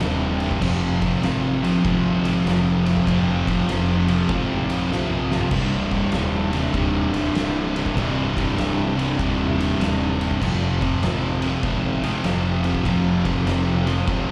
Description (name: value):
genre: stoner and doom metal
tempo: 98 BPM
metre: 4/4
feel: swing 65% on 8ths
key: unclear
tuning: A4 = 445 Hz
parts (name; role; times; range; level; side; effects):
- organ-like drone; sustained chords; 0.4-14.3 s; C3 to G4; -36 LUFS; equal; none
- crunchy overdriven guitar; riff; 0.0-14.3 s; C2 to F3; -29 LUFS; equal; slapback echo
- thick fuzz guitar; riff; 0.0-14.3 s; C2 to F3; -28 LUFS; equal; distortion
- thick fuzz guitar; riff; 0.0-14.3 s; C2 to F3; -27 LUFS; equal; distortion, slapback echo
- fuzz fingered electric bass; bass; 0.0-14.3 s; C1 to Bb1; -28 LUFS; equal; overdrive
- oversized low-tuned drum kit; drums; 0.0-14.3 s; crash cymbal, kick drum, ride cymbal, snare drum, toms; -30 LUFS; equal; none
room: light reverb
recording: live gig heard through the venue's PA, club reverb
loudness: -21 LUFS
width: mono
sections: 0.0-14.3 A section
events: drum fill 4.9-5.5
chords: 0.0 Cm; 0.6 Fm; 5.5 Cm; 10.4 Fm